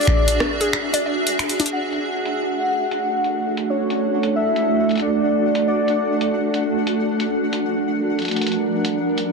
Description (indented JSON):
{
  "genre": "IDM",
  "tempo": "91 BPM",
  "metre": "4/4",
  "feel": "swing 62% on 16ths",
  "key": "unclear",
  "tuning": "A4 = 440 Hz",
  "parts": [
    { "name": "warm velvety synth lead", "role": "melody", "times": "0.0-6.6 s", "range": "C#5 to F#5", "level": "-23 LUFS", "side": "left 2 dB", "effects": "chorus, tape echo" },
    { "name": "granular cloud pad", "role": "sustained chords", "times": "0.0-9.3 s", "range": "F3 to E5", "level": "-21 LUFS", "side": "right 2 dB", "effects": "built-in reverb, vintage 12-bit sampler grit" },
    { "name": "booming analog drum machine", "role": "drums", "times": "0.0-9.3 s", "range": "finger snaps, hi-hat, rim click", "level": "-26 LUFS", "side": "equal", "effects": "soft clipping on snare, low-pass filter on snare, low-pass filter on hats, low-pass filter on room" },
    { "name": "warbly dusty pluck", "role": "arpeggios", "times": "0.1-1.7 s", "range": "D4 to D5", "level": "-28 LUFS", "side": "left 2 dB", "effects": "chorus, ping-pong delay" },
    { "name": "pulsing gated texture", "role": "texture", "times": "1.7-9.3 s", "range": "D4 to F#5", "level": "-29 LUFS", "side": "right 1 dB", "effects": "chorus, built-in reverb" }
  ],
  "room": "light reverb, digital ambience",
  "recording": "dense, heavily limited modern master",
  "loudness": "-18 LUFS",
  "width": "side -4 dB against mid",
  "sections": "0.0-1.7 A section; 1.7-9.3 B section",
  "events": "drum fill 1.4-1.7; filter sweep on ambient pad 1.7-9.3",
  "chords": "0.0 E9; 1.7 Dmaj7; 7.0 Bb6",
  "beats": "0.40 1.06 | 1.72 2.38 3.04 3.70 | 4.36 5.02 5.68 6.34 | 7.00 7.66 8.31 8.97"
}